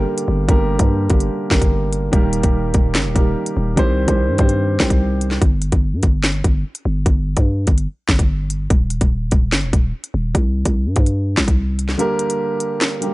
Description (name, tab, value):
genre	hip hop, drill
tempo	146 BPM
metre	4/4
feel	half-time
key	G minor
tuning	A4 = 441 Hz
part	warm concert grand piano	accompaniment	0.0-5.4, 12.0-13.1 s	D3 to C5	-20 LUFS	right 1 dB	low-pass filter
part	growling 808-style bass	bass	0.0-12.0 s	Eb1 to G2	-19 LUFS	equal	none
part	drill drum kit	drums	0.2-13.1 s	handclaps, hi-hat, kick drum, snare drum	-16 LUFS	equal	none
room	small room ambience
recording	dry, gritty hardware recording, nothing above 10.9 kHz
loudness	-15 LUFS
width	side -19 dB against mid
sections	0.0-13.1 A section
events	break 12.0-13.1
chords	0.0 Gm; 2.1 Eb; 3.8 Cm; 5.4 N.C.; 10.3 C5; 12.0 Gm